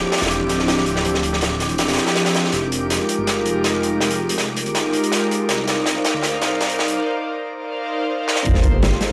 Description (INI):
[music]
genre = drum and bass, jungle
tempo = 162 BPM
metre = 4/4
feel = straight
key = unclear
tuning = A4 = 440 Hz
[part]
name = airy breathy pad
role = sustained chords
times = 0.0-9.1 s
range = F3 to F5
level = -23 LUFS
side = equal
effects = chorus
[part]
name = wind-like tuned noise texture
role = texture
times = 0.0-7.0 s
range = D6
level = -34 LUFS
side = equal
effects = built-in reverb
[part]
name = crunchy breakbeat drum kit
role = drums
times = 0.1-9.1 s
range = hi-hat, kick drum, snare drum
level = -23 LUFS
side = equal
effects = high-pass filter on kick, high-pass filter on hats, high-pass filter on snare, high-pass filter on room
[part]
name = detuned saw bass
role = bass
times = 0.2-8.9 s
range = D1 to D2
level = -28 LUFS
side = equal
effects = none
[part]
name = sub drop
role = sound effects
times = 8.5-9.1 s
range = none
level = -24 LUFS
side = equal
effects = none
[sound]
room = light reverb, small room ambience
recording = dry, gritty hardware recording, vinyl crackle, high-pass filter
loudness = -20 LUFS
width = mono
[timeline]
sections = 0.0-8.5 A section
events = build-up 0.0-8.5; drum fill 2.5-7.0, 8.3; break 7.0-8.5; impact 8.5-9.1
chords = 0.0 Dm11; 2.5 Fm11; 5.5 Cm11; 8.5 Gm11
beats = 0.31 0.68 | 1.05 1.42 1.79 2.16 | 2.53 2.90 3.27 3.64 | 4.01 4.38 4.75 5.12 | 5.50 5.87 6.24 6.61 | 6.98 7.35 7.72 8.09 | 8.46 8.83